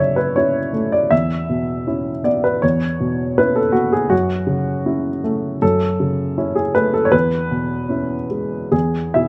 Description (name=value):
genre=neoclassical minimalist piano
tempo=80 BPM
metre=4/4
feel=rubato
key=F# minor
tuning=A4 = 440 Hz
part: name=warm baby grand piano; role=solo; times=0.0-9.3 s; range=E2 to E5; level=-19 LUFS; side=equal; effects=none
room=light reverb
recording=dark, warm production, nothing above 10.5 kHz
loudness=-19 LUFS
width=mono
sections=0.0-9.3 A section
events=none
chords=0.0 F#m7; 1.1 C#m7/E; 4.1 F#m7; 7.1 C#m7/E; 8.7 E